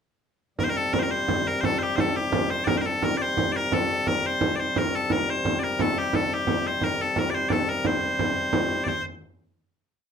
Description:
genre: medieval dance.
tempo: 116 BPM (dotted quarters).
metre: 6/8.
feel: straight.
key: unclear.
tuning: A4 = 440 Hz.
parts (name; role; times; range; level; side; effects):
loud bright bagpipes; melody; 0.6-9.0 s; G4 to D5; -26 LUFS; left 1 dB; none.
pedal harmonium; drone; 0.6-8.9 s; C3 to G3; -32 LUFS; left 3 dB; none.
frame drum; percussion; 0.6-9.0 s; none; -26 LUFS; right 2 dB; none.
room: wet small room reverb, RT60 0.6 s.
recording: band playing live in one room.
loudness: -22 LUFS.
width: side -7 dB against mid.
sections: 0.6-8.9 A section; 8.9-9.9 final note.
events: none.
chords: none.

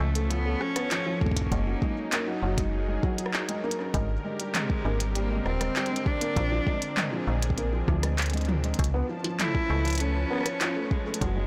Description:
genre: IDM.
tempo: 99 BPM.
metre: 4/4.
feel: straight.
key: unclear.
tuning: A4 = 440 Hz.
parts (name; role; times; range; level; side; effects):
clear cello; melody; 0.0-11.5 s; Ab3 to E4; -36 LUFS; equal; dub echo.
warm analog pad; sustained chords; 0.0-11.5 s; D3 to A5; -38 LUFS; equal; chorus, vintage 12-bit sampler grit.
metallic FM bass; bass; 0.0-11.5 s; Eb1 to D2; -30 LUFS; equal; none.
felt-muted upright piano; arpeggios; 0.2-11.5 s; F3 to Db4; -36 LUFS; equal; dub echo.
glitchy drum kit; drums; 0.2-11.3 s; handclaps, hi-hat, rim click, toms; -34 LUFS; equal; none.
electronic kick drum; drums; 1.2-11.3 s; none; -30 LUFS; equal; none.
room: light reverb, digital ambience.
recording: blown-out, overdriven recording, overdrive.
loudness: -28 LUFS.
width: mono.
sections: 0.0-11.5 A section.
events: none.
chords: 0.0 Dbaug7; 1.5 Gb69; 3.9 Abmaj9#11; 6.4 Bb9; 8.8 Db7alt.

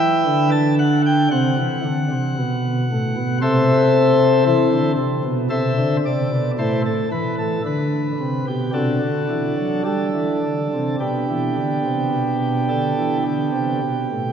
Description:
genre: classical, chorale-style piece for pipe organ.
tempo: 51-58 BPM.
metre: 4/4.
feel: rubato.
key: G major.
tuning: A4 = 441 Hz.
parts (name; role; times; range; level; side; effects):
chamber organ, principal chorus; solo; 0.0-14.3 s; A2 to A5; -17 LUFS; equal; none.
room: wet church reverb, RT60 3.7 s.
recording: heard from further back in the room, nothing above 7.8 kHz.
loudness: -17 LUFS.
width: side -8 dB against mid.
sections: 0.0-14.3 A section.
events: none.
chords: 0.0 Em; 1.3 Am; 7.7 D7; 9.9 G.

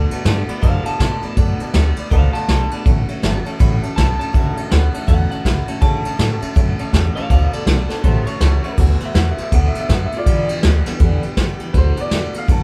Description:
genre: rockabilly.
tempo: 162 BPM.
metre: 4/4.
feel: swing 62% on 8ths.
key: D major.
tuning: A4 = 442 Hz.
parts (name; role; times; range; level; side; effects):
bright upright piano; accompaniment; 0.0-12.6 s; E3 to B5; -32 LUFS; equal; none.
picked steel-string acoustic guitar; accompaniment; 0.0-12.6 s; G2 to G4; -28 LUFS; equal; none.
upright bass; bass; 0.0-12.6 s; G1 to C#3; -20 LUFS; equal; none.
vintage brush drum kit; drums; 0.1-12.6 s; crash cymbal, kick drum, ride cymbal, snare drum; -20 LUFS; equal; none.
electric guitar through a small old amp; melody; 0.6-8.8 s; G4 to C6; -28 LUFS; equal; none.
room: light reverb.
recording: band playing live in one room.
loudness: -17 LUFS.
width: mono.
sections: 0.0-8.8 A section; 8.8-12.6 B section.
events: upright piano solo 8.8-12.6.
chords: 0.0 D6; 2.9 A6; 7.3 D6; 8.0 A6; 8.8 D6; 10.3 G6; 11.7 D6.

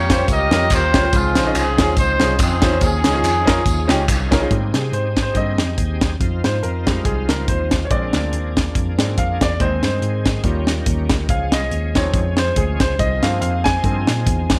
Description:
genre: uptempo gospel.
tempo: 142 BPM.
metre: 4/4.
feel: swing 55% on 8ths.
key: Ab major.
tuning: A4 = 440 Hz.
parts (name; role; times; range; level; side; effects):
warm horn section; melody; 0.0-4.1 s; Ab3 to Eb5; -22 LUFS; equal; slapback echo.
clear baby grand piano; accompaniment; 0.0-14.6 s; Db3 to Ab5; -25 LUFS; equal; none.
bright tonewheel organ; sustained chords; 0.0-14.6 s; Db3 to G5; -32 LUFS; equal; slow rotary speaker, overdrive, chorus vibrato.
mellow tine electric piano; bass; 0.0-14.6 s; Bb1 to C3; -24 LUFS; equal; none.
crisp fusion drum kit; drums; 0.1-14.6 s; hi-hat, kick drum, snare drum; -22 LUFS; equal; none.
tambourine and handclaps; percussion; 0.1-4.4 s; none; -31 LUFS; equal; none.
room: light reverb.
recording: none.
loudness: -18 LUFS.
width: mono.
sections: 0.0-4.5 A section; 4.5-14.6 B section.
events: tonewheel organ fill 3.7-4.5; grand piano solo 4.5-14.6.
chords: 0.0 Eb13; 1.1 Dbmaj9; 2.8 Eb9sus4; 4.5 Abmaj7; 6.2 Fm7; 7.9 Bb7; 9.6 Ab/Eb; 10.4 Eb7; 11.3 Dbmaj7; 13.0 Ab6/C.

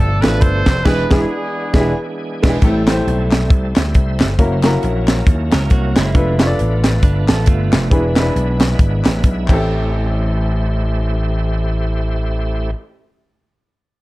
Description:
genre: uptempo gospel.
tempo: 136 BPM.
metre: 4/4.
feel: swing 58% on 8ths.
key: A minor.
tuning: A4 = 437 Hz.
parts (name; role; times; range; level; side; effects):
bright horn section; melody; 0.0-2.0 s; B3 to C5; -21 LUFS; right 2 dB; plate reverb.
bright tonewheel organ; sustained chords; 0.0-12.7 s; B2 to G#5; -25 LUFS; right 1 dB; slow rotary speaker, overdrive, chorus vibrato, plate reverb.
vintage slap bass; bass; 0.0-12.7 s; E1 to D#2; -18 LUFS; equal; none.
clear upright piano; accompaniment; 0.2-12.8 s; A1 to D5; -20 LUFS; equal; plate reverb.
tight funk drum kit; drums; 0.2-9.6 s; crash cymbal, hi-hat, kick drum, snare drum; -14 LUFS; equal; none.
group handclap; percussion; 0.2-9.9 s; none; -29 LUFS; left 6 dB; none.
clean electric guitar; second line; 5.5-7.9 s; G#3 to B4; -25 LUFS; right 5 dB; plate reverb.
room: light reverb, studio reverb.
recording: dark, warm production.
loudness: -13 LUFS.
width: side -19 dB against mid.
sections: 0.0-2.6 A section; 2.6-9.7 B section; 9.7-13.2 C section.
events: band accent 0.9-2.6; tonewheel organ fill 9.0-9.7.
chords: 0.0 Bm7b5; 0.9 E7; 2.6 Am7; 4.4 F#7; 6.1 Bm7b5/F; 7.9 E7; 9.5 Am7.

